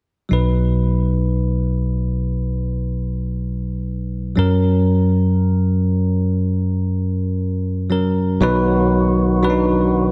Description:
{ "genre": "pop", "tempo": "59 BPM", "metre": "4/4", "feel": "straight", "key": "B major", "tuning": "A4 = 440 Hz", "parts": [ { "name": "bell-like tine electric piano", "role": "accompaniment", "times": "0.3-10.1 s", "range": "B1 to B4", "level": "-19 LUFS", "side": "equal", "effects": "subtle chorus" }, { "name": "tonewheel organ", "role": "sustained chords", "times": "8.4-10.1 s", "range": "D#3 to F#4", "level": "-26 LUFS", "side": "equal", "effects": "slow rotary speaker" }, { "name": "fretless electric bass", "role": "bass", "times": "8.4-10.1 s", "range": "B1", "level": "-24 LUFS", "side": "equal", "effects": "none" } ], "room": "moderate lush hall reverb, RT60 2.2 s", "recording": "none", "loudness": "-19 LUFS", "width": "mono", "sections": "0.3-8.4 A section; 8.4-10.1 B section", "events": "none", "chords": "0.3 B; 4.4 F#; 8.4 B" }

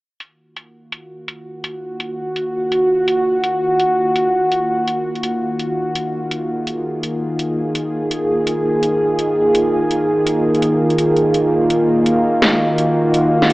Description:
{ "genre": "half-time drum and bass", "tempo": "167 BPM", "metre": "4/4", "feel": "swing 56% on 16ths, half-time", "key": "Eb minor", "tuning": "A4 = 440 Hz", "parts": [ { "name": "bowed-like drone", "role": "sustained chords", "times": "1.5-13.5 s", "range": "Eb3 to Ab4", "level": "-15 LUFS", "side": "equal", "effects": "built-in reverb" }, { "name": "drum and bass drum kit", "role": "drums", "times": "0.2-13.5 s", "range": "hi-hat, snare drum", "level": "-20 LUFS", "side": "equal", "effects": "low-pass filter on hats, low-pass filter on snare, low-pass filter on room" } ], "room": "wet lush hall reverb, RT60 2.0 s", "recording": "AM radio sound", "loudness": "-15 LUFS", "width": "side -20 dB against mid", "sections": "0.2-13.5 A section", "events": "filter sweep on drum 0.2-13.5", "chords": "0.2 Ebmadd9" }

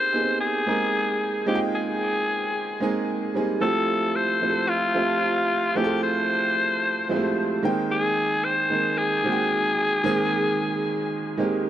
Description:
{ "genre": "amapiano", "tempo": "112 BPM", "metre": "4/4", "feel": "swing 55% on 16ths", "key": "unclear", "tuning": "A4 = 441 Hz", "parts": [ { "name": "growling alto saxophone", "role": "melody", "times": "0.0-11.7 s", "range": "F4 to C5", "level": "-24 LUFS", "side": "left 2 dB", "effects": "dub echo" }, { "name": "clear baby grand piano", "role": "accompaniment", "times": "0.0-11.7 s", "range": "Eb3 to G5", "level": "-25 LUFS", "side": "right 2 dB", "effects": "none" } ], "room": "light reverb, studio ambience", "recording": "echo-heavy mix", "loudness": "-21 LUFS", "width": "side -11 dB against mid", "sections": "0.0-11.7 A section", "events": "none", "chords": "0.0 Abmaj9; 3.6 Fmaj9; 7.6 Abmaj9" }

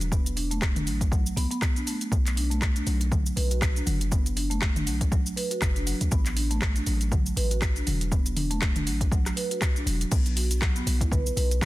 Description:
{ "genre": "afro house", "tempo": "120 BPM", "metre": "4/4", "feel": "swing 57% on 16ths", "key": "B minor", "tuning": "A4 = 438 Hz", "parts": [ { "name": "warm 808-style bass", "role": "bass", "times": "0.0-11.7 s", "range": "E1 to D2", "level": "-28 LUFS", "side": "equal", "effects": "sidechain pumping" }, { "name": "afro-pop drum kit", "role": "drums", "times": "0.0-11.7 s", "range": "cabasa, crash cymbal, handclaps, hi-hat, rim click, toms", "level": "-31 LUFS", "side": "left 1 dB", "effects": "none" }, { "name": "marimba with soft mallets", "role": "arpeggios", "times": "0.1-11.7 s", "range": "F#3 to B4", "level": "-32 LUFS", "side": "right 2 dB", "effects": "sidechain pumping, tape echo" }, { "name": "electronic kick drum", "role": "drums", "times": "0.1-11.7 s", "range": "none", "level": "-25 LUFS", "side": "equal", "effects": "none" } ], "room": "little or no reverb", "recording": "dense, heavily limited modern master", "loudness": "-23 LUFS", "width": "side -17 dB against mid", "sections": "0.0-10.1 A section; 10.1-11.7 B section", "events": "drop 10.1-11.7", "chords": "0.0 A5; 2.1 Bm; 6.1 A5; 10.1 B5" }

